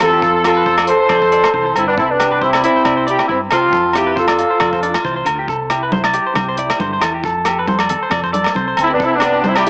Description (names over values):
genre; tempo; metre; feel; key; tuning
highlife guitar band; 137 BPM; 4/4; swing 55% on 16ths; C major; A4 = 440 Hz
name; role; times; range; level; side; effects
warm horn section; melody; 0.0-5.0, 8.8-9.7 s; B3 to C5; -14 LUFS; equal; cassette tape
breathy tenor saxophone; second line; 0.0-5.0, 8.8-9.7 s; B3 to A4; -22 LUFS; equal; none
clean electric guitar; accompaniment; 0.0-9.7 s; G2 to A4; -24 LUFS; equal; tremolo
semi-hollow electric guitar; arpeggios; 0.0-9.7 s; G4 to D5; -21 LUFS; equal; wide subtle chorus
fingered electric bass; bass; 0.0-9.7 s; C2 to G2; -28 LUFS; equal; none
warm soul drum kit; drums; 0.0-9.7 s; hi-hat, kick drum, rim click; -25 LUFS; equal; cassette tape
agogo bells; percussion; 0.0-9.7 s; none; -20 LUFS; equal; none
congas; percussion; 5.5-9.6 s; none; -22 LUFS; equal; none
room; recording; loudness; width
moderate spring reverb, RT60 1.7 s, studio reverb; home recording on cassette, small speaker sound; -12 LUFS; side -36 dB against mid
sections
0.0-9.7 A section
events
none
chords
0.0 C; 7.2 F; 9.0 C